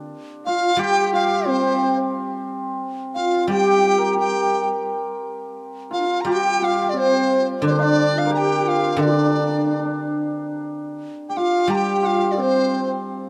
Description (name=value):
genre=chinese traditional, Chinese chamber ensemble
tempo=88 BPM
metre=4/4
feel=rubato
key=G yu mode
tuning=A4 = 444 Hz
part: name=hammered dulcimer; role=second line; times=0.0-13.3 s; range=C4 to Bb4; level=-26 LUFS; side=equal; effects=none
part: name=guzheng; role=accompaniment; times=0.0-13.3 s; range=D3 to Bb4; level=-29 LUFS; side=equal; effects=none
part: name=mellow hollow dizi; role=melody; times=0.5-12.9 s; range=C5 to Bb5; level=-25 LUFS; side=equal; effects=none
part: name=dark horsehead fiddle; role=second line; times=0.5-12.9 s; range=C4 to G4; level=-27 LUFS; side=equal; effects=none
part: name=xiao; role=second line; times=0.5-12.9 s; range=D4 to D5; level=-27 LUFS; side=equal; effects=none
room=moderate plate reverb, RT60 3.4 s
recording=heard from further back in the room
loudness=-20 LUFS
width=mono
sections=0.0-13.3 A section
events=none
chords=none